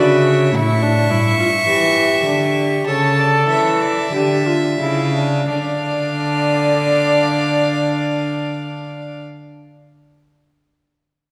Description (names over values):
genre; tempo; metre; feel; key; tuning
classical, baroque-style fugue for string quartet; 43-55 BPM; 4/4; straight; D minor; A4 = 440 Hz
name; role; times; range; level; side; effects
rich violin; melody; 0.0-9.2 s; E5 to C#6; -25 LUFS; equal; none
rich violin; second line; 0.0-9.2 s; B4 to F5; -24 LUFS; equal; none
dark viola; accompaniment; 0.0-9.2 s; D4 to A4; -22 LUFS; equal; none
dark cello; bass; 0.0-9.2 s; G2 to E3; -21 LUFS; equal; none
room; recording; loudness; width
wet concert hall reverb, RT60 1.8 s; recorded in a church or concert hall; -17 LUFS; mono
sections
0.0-5.5 A section; 5.5-11.1 B section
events
slowing down 0.0-5.5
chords
0.0 E5; 0.5 A7; 5.5 Dm